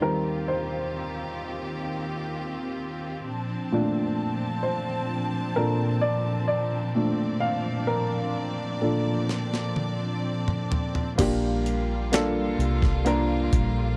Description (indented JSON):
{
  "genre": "pop ballad",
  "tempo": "64 BPM",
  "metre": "4/4",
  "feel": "straight",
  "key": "Bb major",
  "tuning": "A4 = 440 Hz",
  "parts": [
    { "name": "warm baby grand piano", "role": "accompaniment", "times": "0.0-14.0 s", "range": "Bb2 to F5", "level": "-29 LUFS", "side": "equal", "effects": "none" },
    { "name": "rich studio string section", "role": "sustained chords", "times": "0.0-14.0 s", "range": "Eb2 to A5", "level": "-33 LUFS", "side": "equal", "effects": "none" },
    { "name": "breakbeat sampler-style drum kit", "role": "drums", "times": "9.3-13.7 s", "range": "crash cymbal, hi-hat, kick drum, snare drum, toms", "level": "-29 LUFS", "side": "equal", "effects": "none" },
    { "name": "vintage muted fingered electric bass", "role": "bass", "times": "11.2-14.0 s", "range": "Bb1 to C2", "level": "-29 LUFS", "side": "equal", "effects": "none" }
  ],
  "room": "little or no reverb",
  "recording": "dry, close 1970s-style studio recording",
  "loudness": "-27 LUFS",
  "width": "mono",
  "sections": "0.0-11.2 A section; 11.2-14.0 B section",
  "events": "grand piano solo 0.0-11.2; drum fill 9.3-11.2",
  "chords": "0.0 Eb6; 3.3 Bbmaj7; 11.2 Gm7/Bb"
}